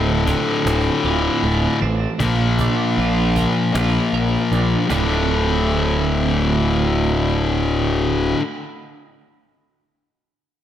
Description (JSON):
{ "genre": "quiet-loud alternative rock", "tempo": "78 BPM", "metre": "4/4", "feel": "straight", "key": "D minor", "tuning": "A4 = 440 Hz", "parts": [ { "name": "twelve-string electric guitar", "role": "arpeggios", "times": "0.0-8.4 s", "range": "D2 to Bb4", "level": "-25 LUFS", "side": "right 10 dB", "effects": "harmonic tremolo, slapback echo" }, { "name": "fuzz guitar", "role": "riff", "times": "0.0-8.4 s", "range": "D2 to Bb3", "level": "-19 LUFS", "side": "left 4 dB", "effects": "distortion" }, { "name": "fuzz picked electric bass", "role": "bass", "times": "0.0-8.3 s", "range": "D1 to Bb1", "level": "-21 LUFS", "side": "right 1 dB", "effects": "overdrive" }, { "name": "cajon", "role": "drums", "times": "0.3-5.1 s", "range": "none", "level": "-30 LUFS", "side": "right 1 dB", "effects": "none" } ], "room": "moderate lush hall reverb, RT60 1.9 s", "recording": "big arena sound", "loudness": "-16 LUFS", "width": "side -10 dB against mid", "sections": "0.0-5.3 A section; 5.3-8.4 B section", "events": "drum fill 4.5-5.3", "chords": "0.0 Dm7; 2.2 Bb; 4.9 Dm7" }